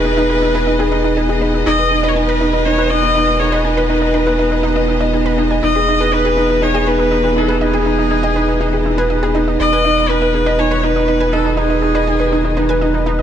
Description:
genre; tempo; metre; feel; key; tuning
piano and strings electronica; 121 BPM; 4/4; straight; E major; A4 = 436 Hz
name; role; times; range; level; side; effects
rich viola; melody; 0.0-13.0 s; G#4 to D#5; -18 LUFS; left 1 dB; none
clear symphonic string section; sustained chords; 0.0-13.2 s; D#3 to D#5; -23 LUFS; left 1 dB; none
wide unison pluck; arpeggios; 0.0-13.2 s; D#4 to G#5; -25 LUFS; right 2 dB; cassette tape, ping-pong delay
felt-muted upright piano; riff; 0.0-13.2 s; D#4 to D#5; -16 LUFS; right 1 dB; ping-pong delay
warm sub bass; bass; 0.0-13.2 s; E1; -20 LUFS; equal; none
room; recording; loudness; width
light reverb; none; -12 LUFS; side -9 dB against mid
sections
0.0-13.2 A section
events
none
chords
0.0 Emaj7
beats
0.17 0.67 1.17 | 1.66 2.16 2.65 3.15 | 3.65 4.14 4.64 5.13 | 5.63 6.12 6.62 7.12 | 7.61 8.11 8.60 9.10 | 9.60 10.09 10.59 11.08 | 11.58 12.07 12.57 13.07

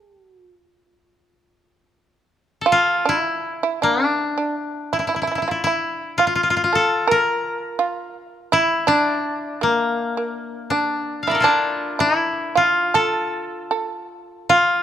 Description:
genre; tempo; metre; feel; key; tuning
japanese traditional, Japanese chamber music; 75-87 BPM; 4/4; rubato; A miyako bushi; A4 = 442 Hz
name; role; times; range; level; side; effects
koto; melody; 0.0-14.8 s; Bb3 to F5; -19 LUFS; left 2 dB; none
shamisen; second line; 0.0-14.8 s; Bb3 to Bb4; -22 LUFS; right 5 dB; none
room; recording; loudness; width
light reverb; close, detailed microphones; -18 LUFS; side -10 dB against mid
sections
0.0-2.7 A section; 2.7-14.8 B section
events
none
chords
none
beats
0.36 1.11 1.89 | 2.67 3.44 4.19 4.92 | 5.64 6.37 7.08 7.79 | 8.52 9.24 9.97 10.72 | 11.45 12.19 12.94 13.71 | 14.49

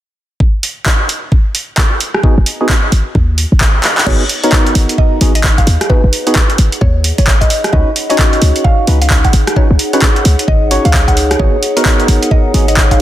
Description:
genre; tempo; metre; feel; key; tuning
UK garage, two-step garage; 131 BPM; 4/4; swing 62% on 16ths; G# minor; A4 = 442 Hz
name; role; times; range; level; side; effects
electronic kick drum; drums; 0.4-13.0 s; none; -12 LUFS; equal; none
punchy analog drum machine; drums; 0.6-13.0 s; crash cymbal, handclaps, hi-hat, rim click; -15 LUFS; right 1 dB; overdrive
percussive organ stab; stabs; 2.2-12.7 s; B3 to C#5; -18 LUFS; equal; wide subtle chorus
short 808-style bass; bass; 2.4-13.0 s; G#1 to D#2; -12 LUFS; equal; none
mallet-like synth pluck; melody; 4.1-13.0 s; B4 to F#5; -20 LUFS; equal; chorus, phaser, digital delay
warbly tape-like pad; texture; 4.3-13.0 s; D#4 to F#5; -21 LUFS; right 1 dB; chorus, built-in reverb, sidechain pumping
room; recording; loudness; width
light reverb; dense, heavily limited modern master; -9 LUFS; side -13 dB against mid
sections
0.4-4.1 A section; 4.1-13.0 B section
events
drum fill 3.8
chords
0.4 G#m7; 3.8 N.C.; 4.1 G#m7; 7.5 C#9sus4; 11.4 G#m7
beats
| 0.40 0.86 1.32 1.78 | 2.24 2.69 3.15 3.61 | 4.07 4.53 4.98 5.44 | 5.90 6.36 6.82 7.27 | 7.73 8.19 8.65 9.11 | 9.56 10.02 10.48 10.94 | 11.40 11.85 12.31 12.77

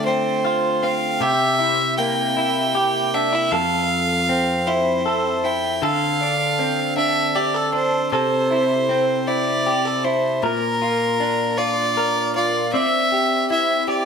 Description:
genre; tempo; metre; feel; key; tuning
pop; 52 BPM (dotted quarters); 6/8; straight; unclear; A4 = 440 Hz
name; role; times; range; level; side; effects
clear violin; melody; 0.0-14.1 s; Bb4 to G5; -20 LUFS; equal; none
direct-recorded clean electric guitar; accompaniment; 0.0-14.1 s; F2 to D5; -20 LUFS; equal; double-tracked left and right
room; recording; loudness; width
moderate recital hall reverb, RT60 1.6 s, studio ambience; none; -17 LUFS; side -6 dB against mid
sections
0.0-14.1 A section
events
none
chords
0.0 Dm7; 1.2 C7; 3.5 Fmaj7; 5.8 Dm7; 8.1 C69; 10.4 Bb; 12.7 Cadd9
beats
0.06 | 1.21 2.36 | 3.52 4.67 | 5.82 6.97 | 8.13 9.28 | 10.43 11.58 | 12.73 13.89

